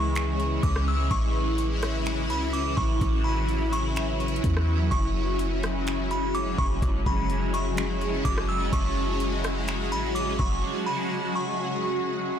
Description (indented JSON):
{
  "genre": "hip hop, atmospheric cloud-rap",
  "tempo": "126 BPM",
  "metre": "4/4",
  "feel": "half-time",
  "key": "unclear",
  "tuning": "A4 = 435 Hz",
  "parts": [
    { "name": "delicate synth tine bell", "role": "melody", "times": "0.0-12.4 s", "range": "B5 to E6", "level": "-32 LUFS", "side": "equal", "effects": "chorus, phaser, tremolo, low-pass filter, digital delay" },
    { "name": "shimmering ambient pad", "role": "sustained chords", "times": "0.0-12.4 s", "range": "C#3 to F#4", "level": "-28 LUFS", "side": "equal", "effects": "chorus, built-in reverb, phaser" },
    { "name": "clean 808-style bass", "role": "bass", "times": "0.0-10.6 s", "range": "F#1 to E2", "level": "-28 LUFS", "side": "equal", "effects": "none" },
    { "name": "trap drum kit", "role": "drums", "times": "0.2-10.5 s", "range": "finger snaps, hi-hat, kick drum, rim click", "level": "-30 LUFS", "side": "equal", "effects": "soft clipping on snare" },
    { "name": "backwards swelling texture", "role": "texture", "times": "6.8-12.4 s", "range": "G#3 to A5", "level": "-41 LUFS", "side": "equal", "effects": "built-in reverb" }
  ],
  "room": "little or no reverb",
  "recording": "blown-out, overdriven recording, overdrive",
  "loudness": "-24 LUFS",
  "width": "side -9 dB against mid",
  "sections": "0.0-12.4 A section",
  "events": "silent gap 10.6-12.4",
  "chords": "0.0 C#m; 1.1 A6; 4.9 F#m9"
}